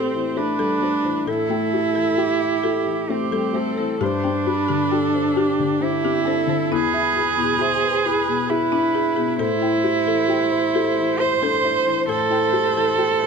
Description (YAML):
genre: neoclassical piano and strings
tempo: 67 BPM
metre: 3/4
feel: rubato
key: A minor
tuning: A4 = 440 Hz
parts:
  - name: muted cello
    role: second line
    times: 0.0-13.3 s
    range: C4 to C5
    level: -20 LUFS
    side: right 5 dB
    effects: none
  - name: felt-muted upright piano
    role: accompaniment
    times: 0.0-13.3 s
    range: E2 to E5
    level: -25 LUFS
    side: left 9 dB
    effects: none
  - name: muted viola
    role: accompaniment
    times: 0.0-13.3 s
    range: G4 to C5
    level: -27 LUFS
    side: right 1 dB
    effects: none
  - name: folk marimba with medium hard mallets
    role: arpeggios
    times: 0.0-13.1 s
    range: E4 to G5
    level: -28 LUFS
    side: left 4 dB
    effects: slapback echo
room: light reverb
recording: close, detailed microphones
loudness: -18 LUFS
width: side -5 dB against mid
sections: 0.0-13.3 A section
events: none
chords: 0.0 Am7; 4.0 Gsus4; 6.7 E; 9.4 Am7